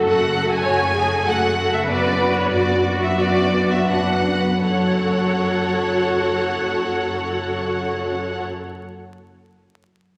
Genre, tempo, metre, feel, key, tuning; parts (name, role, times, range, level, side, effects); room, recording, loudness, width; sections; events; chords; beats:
classical; 77-102 BPM; 4/4; rubato; F# minor; A4 = 440 Hz
warm symphonic violin section; second line; 0.0-8.4 s; A3 to C#5; -26 LUFS; equal
rich symphonic viola section; accompaniment; 0.0-8.4 s; F#3 to C#5; -25 LUFS; equal
concert harp; arpeggios; 0.0-9.1 s; F#2 to F#5; -28 LUFS; equal
rich symphonic violin section; melody; 0.1-8.4 s; C#5 to G#5; -27 LUFS; equal
rich symphonic double bass section; bass; 0.1-8.4 s; F#1; -36 LUFS; equal
warm symphonic cello section; bass; 0.1-8.4 s; F#2; -32 LUFS; equal
wet concert hall reverb, RT60 1.8 s; vinyl crackle; -20 LUFS; mono
0.0-4.7 A section; 4.7-7.7 B section
slowing down 0.0-4.7
0.0 F#m; 1.9 Bm/F#; 4.7 F#m
0.07 0.66 1.26 | 1.87 2.51 3.17 3.89 | 4.66 5.40 6.16 6.91